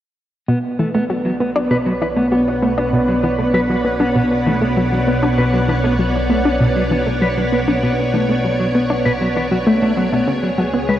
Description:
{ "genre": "ambient, sequencer-driven space music", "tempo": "98 BPM", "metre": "4/4", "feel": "straight", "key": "B minor", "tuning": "A4 = 439 Hz", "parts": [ { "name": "string machine, full ensemble", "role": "sustained chords", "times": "0.5-11.0 s", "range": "B3 to F#5", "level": "-19 LUFS", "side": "equal", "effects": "ensemble chorus" }, { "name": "mellow electric guitar", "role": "arpeggios", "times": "0.5-10.9 s", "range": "F#3 to B4", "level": "-21 LUFS", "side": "left 1 dB", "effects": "auto-pan, ping-pong delay" }, { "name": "analog pluck", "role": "riff", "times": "0.5-11.0 s", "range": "B2 to D4", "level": "-19 LUFS", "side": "equal", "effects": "chorus, vintage 12-bit sampler grit, ping-pong delay" }, { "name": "fat analog bass", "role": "bass", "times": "0.5-11.0 s", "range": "B1 to C#2", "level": "-24 LUFS", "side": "equal", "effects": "none" } ], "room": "wet lush hall reverb, RT60 2.8 s", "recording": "worn, warbling old tape, cassette tape, warbly pitch drift", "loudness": "-14 LUFS", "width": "side -12 dB against mid", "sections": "0.5-11.0 A section", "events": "filter sweep on synth arpeggio sound 0.5-11.0", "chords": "0.5 Bmadd9; 10.3 C#5" }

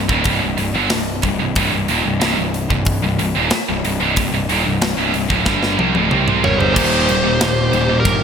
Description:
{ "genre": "heavy metal", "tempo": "92 BPM", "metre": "4/4", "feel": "straight", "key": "C minor", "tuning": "A4 = 437 Hz", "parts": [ { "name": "scooped high-gain guitar", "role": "riff", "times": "0.0-8.2 s", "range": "C2 to C4", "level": "-22 LUFS", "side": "left 11 dB", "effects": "distortion" }, { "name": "scooped high-gain guitar", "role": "riff", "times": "0.0-8.2 s", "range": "C2 to C4", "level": "-20 LUFS", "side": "right 11 dB", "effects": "distortion" }, { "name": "fuzz picked electric bass", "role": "bass", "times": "0.0-8.2 s", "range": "C1 to C2", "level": "-22 LUFS", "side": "equal", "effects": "overdrive" }, { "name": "tight metal drum kit", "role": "drums", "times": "0.1-8.2 s", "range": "crash cymbal, hi-hat, kick drum, snare drum, toms", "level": "-20 LUFS", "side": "equal", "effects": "none" }, { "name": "high-gain lead guitar", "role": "melody", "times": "6.4-8.2 s", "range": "Bb4 to Db5", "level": "-18 LUFS", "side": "equal", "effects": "distortion" }, { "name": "high-gain lead guitar", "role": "second line", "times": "6.4-8.2 s", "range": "G4 to Bb4", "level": "-25 LUFS", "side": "right 5 dB", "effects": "distortion" }, { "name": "high-gain distorted guitar", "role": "riff", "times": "6.7-8.2 s", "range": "Eb2 to Eb3", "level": "-22 LUFS", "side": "left 1 dB", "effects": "distortion" } ], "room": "light reverb, studio reverb", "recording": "bright 1980s-style digital production", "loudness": "-14 LUFS", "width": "side -7 dB against mid", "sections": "0.0-6.8 A section; 6.8-8.2 B section", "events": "drum fill 5.5-6.8", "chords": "0.0 Cm; 6.8 Eb" }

